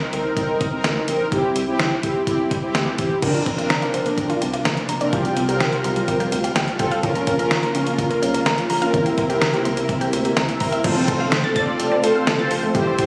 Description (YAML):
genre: synth-pop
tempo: 126 BPM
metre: 4/4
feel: straight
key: F major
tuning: A4 = 441 Hz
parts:
  - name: mellow synth brass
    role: accompaniment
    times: 0.0-13.1 s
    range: C4 to D5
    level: -24 LUFS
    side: equal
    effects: chorus
  - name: rubbery square bass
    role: bass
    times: 0.0-13.1 s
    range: F1 to D2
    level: -32 LUFS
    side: equal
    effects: none
  - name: detuned 8-bit digital drum machine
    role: drums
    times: 0.1-13.1 s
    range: crash cymbal, hi-hat, kick drum, snare drum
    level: -26 LUFS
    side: equal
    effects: overdrive
  - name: ensemble organ-string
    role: sustained chords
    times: 3.2-13.1 s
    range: C3 to F4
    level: -27 LUFS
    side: equal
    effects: ensemble chorus
  - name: resonant blip pluck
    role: arpeggios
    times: 3.2-13.0 s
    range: D3 to A6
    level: -27 LUFS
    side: equal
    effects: phaser, digital delay
  - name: impact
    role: sound effects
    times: 10.9-12.7 s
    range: none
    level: -35 LUFS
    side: equal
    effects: none
room: moderate lush hall reverb, RT60 1.6 s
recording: recorded on a phone in the room, studio reverb, compression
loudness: -20 LUFS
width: mono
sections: 0.0-3.2 A section; 3.2-10.8 B section; 10.8-13.1 C section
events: impact 10.8-12.7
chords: 0.0 Cm7; 1.3 C; 3.2 Bbadd9; 5.1 Fsus2/C; 7.0 Bbm; 8.9 C7; 10.8 F